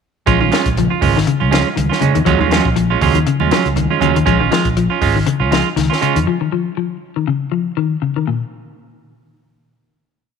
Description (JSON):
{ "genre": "afrobeat", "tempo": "120 BPM", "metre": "4/4", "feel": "swing 55% on 16ths", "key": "Bb minor", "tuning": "A4 = 442 Hz", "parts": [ { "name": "clean electric guitar", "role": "arpeggios", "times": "0.3-8.4 s", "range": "Bb2 to F3", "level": "-18 LUFS", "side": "left 8 dB", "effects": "lush chorus" }, { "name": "semi-hollow electric guitar", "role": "stabs", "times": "0.3-6.2 s", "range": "Gb3 to F4", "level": "-17 LUFS", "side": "right 12 dB", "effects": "slapback echo" }, { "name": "fingered electric bass", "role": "bass", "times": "0.3-6.2 s", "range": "Ab1 to F2", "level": "-19 LUFS", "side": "equal", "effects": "none" }, { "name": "compact cocktail drum kit", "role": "drums", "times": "0.3-6.3 s", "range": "hi-hat, kick drum, snare drum", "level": "-21 LUFS", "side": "left 3 dB", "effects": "none" }, { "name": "congas", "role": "percussion", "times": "0.4-4.2 s", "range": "none", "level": "-22 LUFS", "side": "right 9 dB", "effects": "none" } ], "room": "moderate echo chamber reverb, RT60 2.1 s", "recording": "1960s-style stereo with parts hard left and right", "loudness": "-13 LUFS", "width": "side -6 dB against mid", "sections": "0.3-8.3 groove; 8.3-10.4 final chord", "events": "none", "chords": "0.3 Bbm7; 2.3 Ebm11; 4.3 Bbm7; 6.3 Ebsus2; 8.3 N.C." }